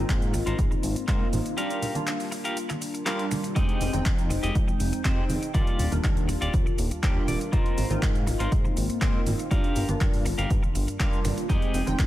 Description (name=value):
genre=filtered disco house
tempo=121 BPM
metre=4/4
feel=straight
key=unclear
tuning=A4 = 439 Hz
part: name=funky polysynth comp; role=accompaniment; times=0.0-12.1 s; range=G3 to G5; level=-30 LUFS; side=equal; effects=chorus, phaser, sidechain pumping, low-pass filter
part: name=fat analog bass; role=bass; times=0.0-12.1 s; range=Eb1 to Ab2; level=-29 LUFS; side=equal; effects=sidechain pumping, low-pass filter
part: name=electronic kick drum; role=drums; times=0.1-12.1 s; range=none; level=-25 LUFS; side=equal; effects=none
part: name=punchy analog drum machine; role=drums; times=0.1-12.1 s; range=finger snaps, handclaps, hi-hat, shaker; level=-35 LUFS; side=equal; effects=overdrive, sidechain pumping on hats, sidechain pumping on perc
part: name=egg shaker and congas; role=percussion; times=0.1-12.1 s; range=none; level=-37 LUFS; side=right 1 dB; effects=sidechain pumping on perc, low-pass filter on perc
part: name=clean electric guitar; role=riff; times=0.3-11.9 s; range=F4 to G5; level=-35 LUFS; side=left 1 dB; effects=vintage 12-bit sampler grit, sidechain pumping, low-pass filter
room=light reverb, digital ambience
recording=none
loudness=-23 LUFS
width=side -14 dB against mid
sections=0.0-12.1 A section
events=break 1.6-3.6; clean electric guitar fill 6.8-7.5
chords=0.0 Ab69; 1.6 Gm7; 3.6 Fm9; 5.5 Ebmaj9; 7.5 Ab69; 9.5 Gm7; 11.5 Fm9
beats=0.09 0.59 1.08 | 1.58 2.07 2.57 3.06 | 3.56 4.06 4.55 5.05 | 5.54 6.04 6.54 7.03 | 7.53 8.02 8.52 9.02 | 9.51 10.01 10.50 11.00 | 11.49 11.99